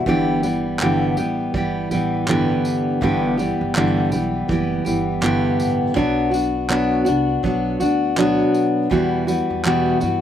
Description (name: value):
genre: acoustic pop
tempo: 81 BPM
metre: 4/4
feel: swing 60% on 16ths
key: G major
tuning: A4 = 439 Hz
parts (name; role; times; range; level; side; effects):
- fingerpicked steel-string acoustic guitar; accompaniment; 0.0-10.2 s; E2 to G4; -18 LUFS; equal; none
- upright bass; bass; 0.1-10.2 s; F#1 to G2; -30 LUFS; right 1 dB; none
- vintage brush drum kit; drums; 0.1-10.2 s; handclaps, kick drum, tambourine; -28 LUFS; right 1 dB; none
room: little or no reverb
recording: recorded outdoors, with no room sound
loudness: -17 LUFS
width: side -10 dB against mid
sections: 0.0-10.2 A section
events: none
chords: 0.1 G6; 6.0 Bm; 8.9 Emadd9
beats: | 0.06 0.80 1.54 2.28 | 3.01 3.75 4.49 5.23 | 5.97 6.70 7.44 8.18 | 8.92 9.65